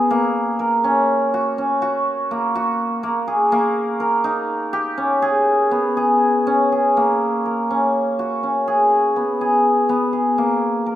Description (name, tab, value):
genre	contemporary instrumental, contemporary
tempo	246 BPM (eighths)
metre	7/8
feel	straight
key	unclear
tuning	A4 = 439 Hz
part	cimbalom	solo	0.0-11.0 s	Bb3 to Bb4	-16 LUFS	equal	none
room	light reverb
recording	close, detailed microphones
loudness	-16 LUFS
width	side -12 dB against mid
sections	0.0-7.0 A section; 7.0-11.0 B section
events	none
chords	0.1 Gb; 1.8 Gbadd9/Bb; 3.5 Eb; 5.2 Db5; 7.0 Bbm; 8.7 Abm; 10.4 Bbm